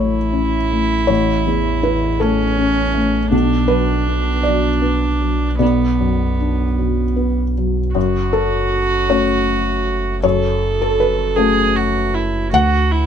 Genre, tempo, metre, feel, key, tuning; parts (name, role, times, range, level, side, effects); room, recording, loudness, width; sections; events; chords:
neoclassical piano and strings; 53 BPM (dotted quarters); 6/8; rubato; F# minor; A4 = 440 Hz
felt-muted upright piano; accompaniment; 0.0-13.1 s; A1 to F#5; -18 LUFS; left 2 dB
rich viola; accompaniment; 0.0-13.1 s; B3 to A4; -20 LUFS; right 5 dB
pure sine sub bass; bass; 0.0-13.1 s; F#1 to D2; -21 LUFS; right 1 dB
little or no reverb; close, detailed microphones; -15 LUFS; side -8 dB against mid
0.0-8.0 A section; 8.0-13.1 B section
0.0 A; 3.3 Bm; 8.0 F#m; 12.5 Dadd9